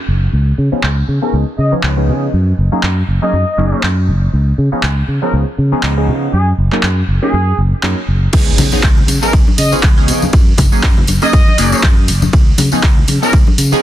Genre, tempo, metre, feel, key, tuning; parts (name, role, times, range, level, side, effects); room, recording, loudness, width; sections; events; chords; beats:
filtered disco house; 120 BPM; 4/4; swing 57% on 16ths; Db mixolydian; A4 = 440 Hz
fingered electric bass; bass; 0.1-13.8 s; Gb1 to Db3; -14 LUFS; equal; sidechain pumping, low-pass filter
funky polysynth comp; accompaniment; 0.7-13.8 s; F3 to Ab4; -19 LUFS; equal; chorus, phaser, cassette tape, sidechain pumping, low-pass filter
punchy analog drum machine; drums; 0.8-13.7 s; crash cymbal, handclaps, hi-hat, ride cymbal; -20 LUFS; right 1 dB; low-pass filter on snare, sidechain pumping on cymbals, low-pass filter on cymbals, sidechain pumping on hats, low-pass filter on hats, low-pass filter on room
clear horn section; melody; 1.2-13.3 s; Ab4 to Eb5; -20 LUFS; equal; sidechain pumping, low-pass filter, digital delay
electronic kick drum; drums; 8.3-13.4 s; -10 LUFS; equal; overdrive
tambourine and congas; percussion; 8.3-13.8 s; -19 LUFS; left 4 dB; sidechain pumping on perc, low-pass filter on perc
impact; sound effects; 8.3-10.3 s; -20 LUFS; equal
little or no reverb; dense, heavily limited modern master; -10 LUFS; side -13 dB against mid
0.0-8.3 A section; 8.3-13.8 B section
filter sweep 0.0-8.3; drop 8.3-13.8; impact 8.3-10.3
0.3 Db9; 2.3 Gb69; 4.3 Db9; 6.3 Gb69; 8.3 Db9; 10.3 Gb69; 12.3 Db9
| 0.33 0.83 1.33 1.83 | 2.33 2.83 3.33 3.83 | 4.33 4.83 5.33 5.83 | 6.33 6.83 7.33 7.83 | 8.33 8.83 9.33 9.83 | 10.33 10.83 11.33 11.83 | 12.33 12.83 13.33